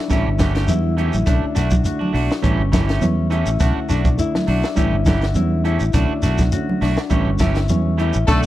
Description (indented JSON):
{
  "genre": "afrobeat",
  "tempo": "103 BPM",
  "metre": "4/4",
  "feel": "swing 53% on 16ths",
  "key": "unclear",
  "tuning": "A4 = 440 Hz",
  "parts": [
    { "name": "concert harp", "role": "arpeggios", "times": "0.0-8.5 s", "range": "C#4 to F#4", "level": "-25 LUFS", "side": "left 9 dB", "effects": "none" },
    { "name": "bright reed electric piano", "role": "accompaniment", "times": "0.1-8.5 s", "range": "D3 to E4", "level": "-27 LUFS", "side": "right 4 dB", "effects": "overdrive, spring reverb" },
    { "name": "electric guitar at the edge of break-up", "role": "stabs", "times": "0.1-8.5 s", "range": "E3 to G4", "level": "-26 LUFS", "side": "right 7 dB", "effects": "none" },
    { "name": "fingered electric bass", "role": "bass", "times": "0.1-8.5 s", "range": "G1 to E2", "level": "-19 LUFS", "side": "equal", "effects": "none" },
    { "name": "compact cocktail drum kit", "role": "drums", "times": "0.1-8.5 s", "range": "hi-hat, kick drum, snare drum", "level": "-21 LUFS", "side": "equal", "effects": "none" },
    { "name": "congas", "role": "percussion", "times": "0.1-7.9 s", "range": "none", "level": "-25 LUFS", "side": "right 2 dB", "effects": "none" },
    { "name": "shekere", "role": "percussion", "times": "0.1-8.5 s", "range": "none", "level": "-25 LUFS", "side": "left 1 dB", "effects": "none" },
    { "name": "clear horn section", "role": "melody", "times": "8.3-8.4 s", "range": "A3 to A4", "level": "-19 LUFS", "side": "left 2 dB", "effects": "none" },
    { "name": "edgy alto saxophone", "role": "second line", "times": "8.3-8.4 s", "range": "A3", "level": "-24 LUFS", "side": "right 2 dB", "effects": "none" }
  ],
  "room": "small room ambience",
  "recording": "dry, close 1970s-style studio recording",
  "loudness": "-16 LUFS",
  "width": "side -14 dB against mid",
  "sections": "0.0-8.3 A section",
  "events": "none",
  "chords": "0.1 A7; 1.3 Bm7; 2.4 A7; 3.6 Bm7; 4.8 A7; 5.9 Bm7; 7.1 A7",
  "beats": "0.10 0.68 | 1.26 1.85 2.43 3.02 | 3.60 4.19 4.77 5.36 | 5.94 6.52 7.11 7.69 | 8.28"
}